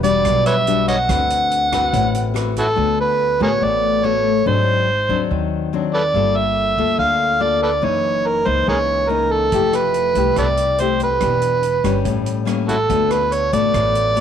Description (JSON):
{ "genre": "bossa nova", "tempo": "142 BPM", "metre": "4/4", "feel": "straight", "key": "unclear", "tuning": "A4 = 438 Hz", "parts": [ { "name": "overdriven harmonica", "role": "melody", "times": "0.0-14.2 s", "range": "E4 to F#5", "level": "-17 LUFS", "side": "right 2 dB", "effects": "none" }, { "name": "nylon-string guitar", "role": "accompaniment", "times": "0.0-14.2 s", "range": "F#2 to B4", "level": "-21 LUFS", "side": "left 9 dB", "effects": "none" }, { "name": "upright bass", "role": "bass", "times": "0.0-14.2 s", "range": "E1 to D#2", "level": "-24 LUFS", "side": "right 2 dB", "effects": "none" }, { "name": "swinging big-band drum kit", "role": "drums", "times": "0.0-2.7, 9.5-14.2 s", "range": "hi-hat, kick drum, rim click", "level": "-30 LUFS", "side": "right 6 dB", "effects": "none" } ], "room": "light reverb, studio ambience", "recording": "1960s-style stereo with parts hard left and right", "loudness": "-15 LUFS", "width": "side -8 dB against mid", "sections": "0.0-2.8 A section; 2.8-14.2 B section", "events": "none", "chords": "0.0 Em9; 1.1 D6; 4.5 G#7#11; 6.1 Gm9; 7.8 F#6; 9.5 Fmaj9; 11.2 Em7; 12.1 A7b9; 12.9 D6", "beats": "0.25 0.67 | 1.09 1.51 1.93 2.35 | 2.77 3.19 3.62 4.04 | 4.46 4.88 5.30 5.72 | 6.14 6.57 6.99 7.41 | 7.83 8.25 8.68 9.10 | 9.52 9.94 10.36 10.79 | 11.21 11.63 12.05 12.47 | 12.90 13.32 13.74 14.16" }